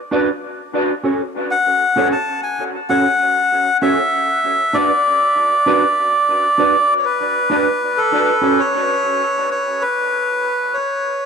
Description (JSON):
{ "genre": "reggae", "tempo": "65 BPM", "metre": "4/4", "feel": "straight", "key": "F# minor", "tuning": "A4 = 440 Hz", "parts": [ { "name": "mellow electric guitar", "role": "accompaniment", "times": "0.1-8.6 s", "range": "C#4 to D5", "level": "-21 LUFS", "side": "right 2 dB", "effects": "ensemble chorus, dub echo" }, { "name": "melodica", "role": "melody", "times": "1.5-11.3 s", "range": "A4 to A5", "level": "-15 LUFS", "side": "left 1 dB", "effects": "dub echo" } ], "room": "moderate plate reverb, RT60 3.0 s", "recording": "echo-heavy mix", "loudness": "-14 LUFS", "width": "side -6 dB against mid", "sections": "0.0-11.3 A section", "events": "break 8.0-11.3", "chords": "0.0 Bm; 0.6 F#m; 4.3 Bm; 8.0 F#m" }